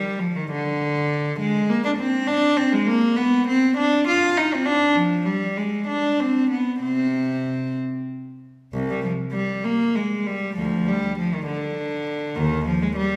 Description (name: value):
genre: classical, baroque-style suite movement for unaccompanied cello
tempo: 66 BPM (dotted quarters)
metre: 6/8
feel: rubato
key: C minor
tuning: A4 = 440 Hz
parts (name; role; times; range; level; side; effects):
- rich cello; solo; 0.0-13.2 s; C2 to F4; -22 LUFS; equal; none
room: wet recital hall reverb, RT60 1.7 s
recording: recorded in a church or concert hall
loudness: -22 LUFS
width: mono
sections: 0.0-8.8 A section; 8.8-13.2 B section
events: none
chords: none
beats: 0.51 | 1.40 2.29 | 3.18 4.08 | 4.98 5.90 | 6.85 7.80 | 8.76 9.67 | 10.57 11.48 | 12.38